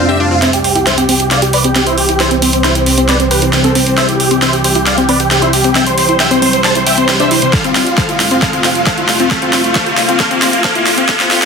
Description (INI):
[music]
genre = uplifting trance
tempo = 135 BPM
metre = 4/4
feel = straight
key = C major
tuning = A4 = 440 Hz
[part]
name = big supersaw lead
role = melody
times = 0.0-11.5 s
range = C4 to A5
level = -14 LUFS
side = right 1 dB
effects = phaser, sidechain pumping, low-pass filter, ping-pong delay
[part]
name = lush unison pad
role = sustained chords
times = 0.0-11.5 s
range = C2 to G4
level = -18 LUFS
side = equal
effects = chorus, sidechain pumping
[part]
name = analog pluck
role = arpeggios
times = 0.0-11.4 s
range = C3 to C5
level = -17 LUFS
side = left 2 dB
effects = chorus, sidechain pumping, ping-pong delay
[part]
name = swell and riser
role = sound effects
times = 0.0-11.5 s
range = none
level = -20 LUFS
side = equal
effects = none
[part]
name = big-room dance drum kit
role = drums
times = 0.4-11.5 s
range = hi-hat, snare drum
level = -14 LUFS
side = right 1 dB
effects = high-pass filter on snare, sidechain pumping on hats, high-pass filter on hats, high-pass filter on room
[part]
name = electronic kick drum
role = drums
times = 7.5-11.2 s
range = none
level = -18 LUFS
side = equal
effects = overdrive
[sound]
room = light reverb, digital ambience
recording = dense, heavily limited modern master, high-pass filter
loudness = -9 LUFS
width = side -5 dB against mid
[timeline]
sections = 0.4-11.5 A section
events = swell 0.0-0.4; build-up 0.4-11.5; drum fill 0.4-11.5; filter sweep on supersaw synth 0.4-11.5; filter sweep on synth pluck 0.4-11.5; riser 4.4-11.5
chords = 0.4 C; 7.5 Fadd9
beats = | 0.42 0.87 1.31 1.75 | 2.20 2.64 3.09 3.53 | 3.98 4.42 4.87 5.31 | 5.75 6.20 6.64 7.09 | 7.53 7.98 8.42 8.87 | 9.31 9.76 10.20 10.64 | 11.09